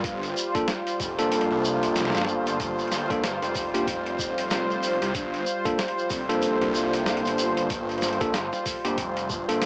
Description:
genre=glitch hop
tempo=94 BPM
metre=4/4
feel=swing 59% on 16ths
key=G minor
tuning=A4 = 440 Hz
part: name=warm analog pad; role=sustained chords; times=0.0-9.7 s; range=G3 to C5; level=-27 LUFS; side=equal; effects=chorus, tremolo, sidechain pumping, cassette tape
part: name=phased detuned saw bass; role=bass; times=0.0-9.7 s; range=F1 to C2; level=-31 LUFS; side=equal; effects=phaser
part: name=boom bap sampler-style drum kit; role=drums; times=0.0-9.7 s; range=hi-hat, snare drum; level=-31 LUFS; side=equal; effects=cassette tape
part: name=electronic kick drum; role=drums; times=0.0-9.4 s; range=none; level=-37 LUFS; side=equal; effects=cassette tape
part: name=shekere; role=percussion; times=0.1-9.7 s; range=none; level=-34 LUFS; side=equal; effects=none
part: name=bell-like tine electric piano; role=stabs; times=0.5-9.7 s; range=Bb3 to A4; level=-27 LUFS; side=equal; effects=sidechain pumping, cassette tape, tape echo
room=light reverb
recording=home recording on cassette, small speaker sound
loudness=-23 LUFS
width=side -38 dB against mid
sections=0.0-9.7 A section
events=none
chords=0.0 Gm7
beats=| 0.04 0.68 1.32 1.96 | 2.60 3.23 3.87 4.51 | 5.15 5.79 6.42 7.06 | 7.70 8.34 8.98 9.62

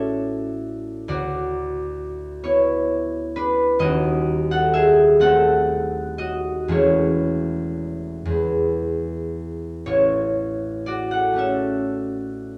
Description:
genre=classical, solo harp piece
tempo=37-46 BPM (dotted quarters)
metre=6/8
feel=rubato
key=A major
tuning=A4 = 440 Hz
part: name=concert harp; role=solo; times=0.0-12.6 s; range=D#1 to F#5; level=-22 LUFS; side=equal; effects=none
room=wet recital hall reverb, RT60 1.4 s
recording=dark, warm production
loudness=-21 LUFS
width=mono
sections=0.0-12.6 A section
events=none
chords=0.0 A; 1.1 Bm/D; 3.8 D#dim7; 6.7 A/E; 8.3 E; 9.9 A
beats=| 1.08 2.43 | 3.81 5.21 | 6.71 8.29 | 9.87 11.36

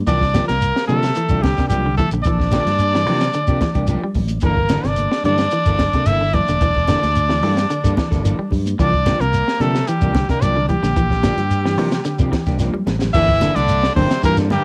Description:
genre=afrobeat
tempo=110 BPM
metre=4/4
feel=straight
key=unclear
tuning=A4 = 441 Hz
part: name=clear trumpet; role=melody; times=0.1-14.6 s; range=G4 to E5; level=-23 LUFS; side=equal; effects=cassette tape, analog delay
part: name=raspy tenor saxophone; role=second line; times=0.1-14.6 s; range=G3 to E4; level=-33 LUFS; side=equal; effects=cassette tape
part: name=clean electric guitar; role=arpeggios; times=0.1-14.6 s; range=C3 to G3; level=-27 LUFS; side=equal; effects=cassette tape
part: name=electric guitar at the edge of break-up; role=stabs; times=0.1-14.5 s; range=E3 to A4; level=-29 LUFS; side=equal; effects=cassette tape
part: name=fingered electric bass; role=bass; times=0.1-14.6 s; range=E1 to C3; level=-23 LUFS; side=equal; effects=none
part: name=compact cocktail drum kit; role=drums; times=0.1-14.6 s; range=crash cymbal, hi-hat, kick drum, snare drum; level=-25 LUFS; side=equal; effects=cassette tape
part: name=shekere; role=percussion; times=0.1-14.5 s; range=none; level=-25 LUFS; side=equal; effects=none
part: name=congas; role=percussion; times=0.3-14.6 s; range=none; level=-30 LUFS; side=equal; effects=none
part: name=bright baritone saxophone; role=second line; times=13.1-14.6 s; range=G2 to E3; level=-28 LUFS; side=equal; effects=cassette tape
room=light reverb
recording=home recording on cassette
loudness=-18 LUFS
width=mono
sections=0.0-13.1 A section; 13.1-14.6 B section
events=drum fill 12.6-13.1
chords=0.1 C9sus4; 4.4 Gm69; 8.8 C9sus4; 13.1 Gm69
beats=| 0.07 0.61 1.16 1.71 | 2.25 2.80 3.34 3.89 | 4.43 4.98 5.52 6.07 | 6.61 7.16 7.70 8.24 | 8.79 9.33 9.88 10.42 | 10.97 11.51 12.05 12.60 | 13.14 13.69 14.23

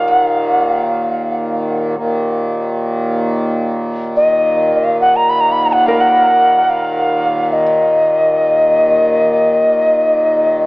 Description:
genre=world meditative, free-time meditation music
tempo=free time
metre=none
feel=none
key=Eb hirajoshi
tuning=A4 = 440 Hz
part: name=bright reedy alto ocarina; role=melody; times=0.0-10.7 s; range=Eb5 to Cb6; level=-12 LUFS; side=equal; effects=dub echo
part: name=hand-pumped harmonium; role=drone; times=0.0-10.7 s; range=Eb2 to Bb2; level=-18 LUFS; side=equal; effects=none
part: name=felt-muted upright piano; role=texture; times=0.0-10.7 s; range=Bb4 to Eb5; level=-24 LUFS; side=equal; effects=none
room=wet plate reverb, RT60 3.4 s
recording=echo-heavy mix, AM radio sound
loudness=-12 LUFS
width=side -22 dB against mid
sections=0.0-10.7 A section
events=none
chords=none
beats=free time

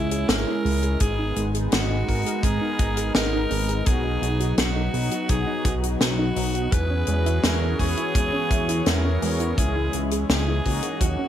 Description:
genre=synthwave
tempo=84 BPM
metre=4/4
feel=straight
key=unclear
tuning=A4 = 442 Hz
part: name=raspy alto saxophone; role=melody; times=0.0-11.3 s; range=E4 to B4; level=-28 LUFS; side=equal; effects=digital delay, shimmer reverb
part: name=chorused pulse-width pad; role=sustained chords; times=0.0-11.3 s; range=D#3 to G#4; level=-31 LUFS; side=equal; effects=sidechain pumping, shimmer reverb
part: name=soft round pluck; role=arpeggios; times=0.0-11.3 s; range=F#3 to G#4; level=-32 LUFS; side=right 4 dB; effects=chorus, digital delay, shimmer reverb
part: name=mellow synth brass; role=stabs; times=0.0-11.3 s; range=F#3 to C#5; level=-31 LUFS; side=left 1 dB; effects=chorus, digital delay, shimmer reverb
part: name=chorused synth bass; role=bass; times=0.0-11.2 s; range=G#1 to E2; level=-25 LUFS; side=equal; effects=tube saturation, sidechain pumping
part: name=tight funk drum kit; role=drums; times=0.1-11.2 s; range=hi-hat, snare drum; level=-26 LUFS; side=left 1 dB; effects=gated reverb
part: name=kick drum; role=drums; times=1.0-11.2 s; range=none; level=-24 LUFS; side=equal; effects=none
room=light reverb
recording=bright 1980s-style digital production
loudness=-20 LUFS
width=side -10 dB against mid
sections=0.0-11.3 A section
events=none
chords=0.0 C#m; 1.0 G#m; 3.9 B; 6.7 E6; 9.6 C#m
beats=0.29 | 1.01 1.72 2.44 3.15 | 3.87 4.58 5.29 6.01 | 6.72 7.44 8.15 8.87 | 9.58 10.29 11.01

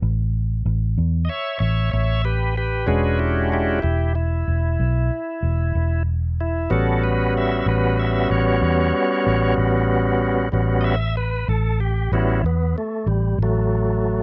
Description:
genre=blues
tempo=63 BPM (dotted quarters)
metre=12/8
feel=straight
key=unclear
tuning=A4 = 440 Hz
part: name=vintage muted fingered electric bass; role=bass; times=0.0-14.2 s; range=E1 to E2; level=-23 LUFS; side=equal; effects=none
part: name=bright tonewheel organ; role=sustained chords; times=1.2-14.2 s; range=F#3 to E5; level=-24 LUFS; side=equal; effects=slow rotary speaker, overdrive
room=digital ambience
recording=dry, close 1970s-style studio recording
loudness=-21 LUFS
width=mono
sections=0.0-14.2 A section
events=tonewheel organ solo 0.0-14.2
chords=0.0 A9; 2.9 E13; 6.7 A13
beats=0.02 0.98 1.93 | 2.89 3.84 4.80 5.75 | 6.71 7.66 8.62 9.58 | 10.53 11.49 12.44 13.40

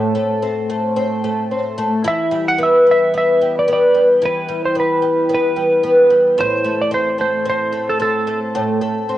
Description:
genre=dream pop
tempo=111 BPM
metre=4/4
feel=straight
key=A minor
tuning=A4 = 438 Hz
part: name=picked twelve-string acoustic guitar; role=arpeggios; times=0.0-9.2 s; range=A2 to C5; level=-15 LUFS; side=equal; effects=analog chorus, cassette tape, plate reverb, tape echo
part: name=clean lap steel guitar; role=melody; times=2.1-8.4 s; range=A4 to F#5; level=-18 LUFS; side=right 2 dB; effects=cassette tape, tape echo
room=wet studio reverb, RT60 0.5 s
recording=home recording on cassette, nothing above 10.3 kHz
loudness=-14 LUFS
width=side -13 dB against mid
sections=0.0-9.2 A section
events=none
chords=0.0 Am; 2.1 Em; 6.4 Am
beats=0.44 0.98 1.52 | 2.06 2.60 3.14 3.68 | 4.22 4.76 5.30 5.84 | 6.38 6.92 7.46 8.00 | 8.54 9.09

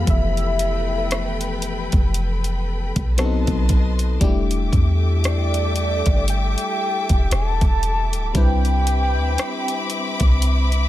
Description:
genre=contemporary R&B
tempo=58 BPM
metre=4/4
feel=swing 58% on 16ths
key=unclear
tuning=A4 = 440 Hz
part: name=warm velvety synth lead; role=melody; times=0.0-10.4 s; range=D5 to A5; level=-25 LUFS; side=right 1 dB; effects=chorus, tremolo, tape echo
part: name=FM electric piano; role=accompaniment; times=0.0-10.9 s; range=E3 to B4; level=-27 LUFS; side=left 5 dB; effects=chorus
part: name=dark studio string section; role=sustained chords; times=0.0-10.9 s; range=C4 to D6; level=-28 LUFS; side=left 2 dB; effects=none
part: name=clean 808-style bass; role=bass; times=0.0-10.9 s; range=D1 to E2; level=-20 LUFS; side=equal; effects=none
part: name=smooth R&B drum kit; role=drums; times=0.1-10.9 s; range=hi-hat, kick drum, rim click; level=-20 LUFS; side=equal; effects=none
room=digital ambience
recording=none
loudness=-18 LUFS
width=side -14 dB against mid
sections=0.0-10.9 A section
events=none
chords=0.0 Fmaj9#11; 3.2 B7b9; 4.2 Em7; 8.4 Cmaj9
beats=| 0.07 1.11 2.14 3.18 | 4.21 5.25 6.28 7.32 | 8.35 9.38 10.42

